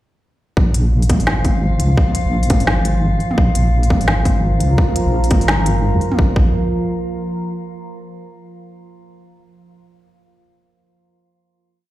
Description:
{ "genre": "half-time drum and bass", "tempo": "171 BPM", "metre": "4/4", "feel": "swing 60% on 16ths, half-time", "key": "unclear", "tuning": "A4 = 439 Hz", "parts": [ { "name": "deep soft wobble bass", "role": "bass", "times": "0.6-6.5 s", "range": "Ab1 to F2", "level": "-16 LUFS", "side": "equal", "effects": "chorus, tube saturation" }, { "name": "electronic kick drum", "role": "drums", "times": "0.6-6.4 s", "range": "none", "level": "-15 LUFS", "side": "equal", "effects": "overdrive" }, { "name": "metallic inharmonic drone", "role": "texture", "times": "0.9-6.2 s", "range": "F3 to F4", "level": "-25 LUFS", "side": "left 1 dB", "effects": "chorus, built-in reverb" }, { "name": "organic electronic drum kit", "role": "drums", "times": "0.7-6.2 s", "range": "hi-hat, snare drum, toms", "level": "-21 LUFS", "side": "equal", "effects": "none" }, { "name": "deep dark ambient pad", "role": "sustained chords", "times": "4.1-7.5 s", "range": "F3 to Bb5", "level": "-23 LUFS", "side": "right 1 dB", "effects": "chorus, built-in reverb, sidechain pumping" } ], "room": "light reverb", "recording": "played on a big sound system in a bare room, large studio reverb", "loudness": "-14 LUFS", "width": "side -15 dB against mid", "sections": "0.6-6.2 drop; 6.2-7.6 final chord", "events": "drop 0.6-6.2", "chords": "0.6 Bb5" }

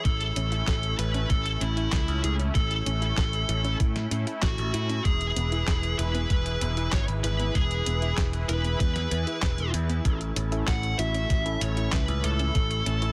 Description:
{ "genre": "synthwave", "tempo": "96 BPM", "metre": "4/4", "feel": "straight", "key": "A major", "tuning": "A4 = 437 Hz", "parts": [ { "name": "high-gain lead guitar", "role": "melody", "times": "0.0-13.1 s", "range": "E4 to F#5", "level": "-33 LUFS", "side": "equal", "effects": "distortion, delay" }, { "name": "warm analog pad", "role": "sustained chords", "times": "0.0-13.1 s", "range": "E3 to B4", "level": "-38 LUFS", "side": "equal", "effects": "chorus, vintage 12-bit sampler grit, sidechain pumping" }, { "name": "soft round pluck", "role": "arpeggios", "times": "0.1-13.1 s", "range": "G#3 to A4", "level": "-42 LUFS", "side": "equal", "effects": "chorus, delay" }, { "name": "picked electric bass", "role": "bass", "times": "0.1-13.1 s", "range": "E1 to A2", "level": "-30 LUFS", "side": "equal", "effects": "none" }, { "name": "clean 12-bit digital drum machine", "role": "drums", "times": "0.1-13.1 s", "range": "handclaps, hi-hat, snare drum", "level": "-36 LUFS", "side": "equal", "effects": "none" }, { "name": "electronic kick drum", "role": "drums", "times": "0.1-12.7 s", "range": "none", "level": "-28 LUFS", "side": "equal", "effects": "none" }, { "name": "tine electric piano", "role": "stabs", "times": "10.1-13.1 s", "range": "A2 to B4", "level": "-37 LUFS", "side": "equal", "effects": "overdrive" } ], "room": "little or no reverb", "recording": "dense, heavily limited modern master", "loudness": "-26 LUFS", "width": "mono", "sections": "0.0-13.1 A section", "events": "none", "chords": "0.1 A; 5.1 E; 10.1 A" }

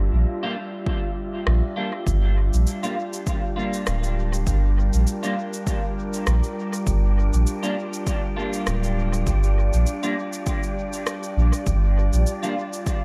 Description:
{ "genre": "ambient dub", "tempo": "100 BPM", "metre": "4/4", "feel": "swing 56% on 16ths", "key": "G dorian", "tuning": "A4 = 438 Hz", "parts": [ { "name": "warbly tape-like pad", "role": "sustained chords", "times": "0.0-13.0 s", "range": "G3 to D5", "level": "-33 LUFS", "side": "equal", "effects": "chorus, built-in reverb" }, { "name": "semi-hollow electric guitar", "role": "stabs", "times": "0.0-12.5 s", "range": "G3 to F4", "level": "-33 LUFS", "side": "equal", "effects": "analog chorus, dub echo" }, { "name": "soft dub sub bass", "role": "bass", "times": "0.0-12.3 s", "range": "D1 to Bb1", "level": "-22 LUFS", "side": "equal", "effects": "none" }, { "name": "wind-like tuned noise texture", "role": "texture", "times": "0.0-13.0 s", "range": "F4 to G5", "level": "-40 LUFS", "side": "equal", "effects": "built-in reverb" }, { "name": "electronic kick drum", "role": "drums", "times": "0.9-13.0 s", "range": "none", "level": "-29 LUFS", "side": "equal", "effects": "overdrive" }, { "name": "electronic rim click and cabasa", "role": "drums", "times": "1.5-13.0 s", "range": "none", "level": "-36 LUFS", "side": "equal", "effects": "dub echo" } ], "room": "little or no reverb", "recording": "none", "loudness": "-23 LUFS", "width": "mono", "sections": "0.0-13.0 A section", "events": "none", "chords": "0.0 Gm7" }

